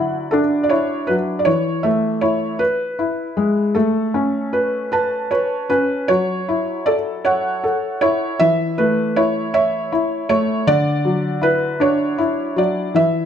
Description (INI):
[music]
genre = children's music, lullaby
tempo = 52 BPM (dotted quarters)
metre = 6/8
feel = straight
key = A major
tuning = A4 = 441 Hz
[part]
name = felt-muted upright piano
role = solo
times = 0.0-13.3 s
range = D3 to A5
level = -16 LUFS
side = equal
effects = none
[sound]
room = moderate recital hall reverb, RT60 1.4 s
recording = none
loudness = -16 LUFS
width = side -8 dB against mid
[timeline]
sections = 0.0-6.1 A section; 6.1-13.3 B section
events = none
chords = 0.0 Dadd9; 1.5 A5/E; 2.6 E; 3.8 Aadd9; 6.1 F#m7; 8.4 A/E; 10.7 Dadd9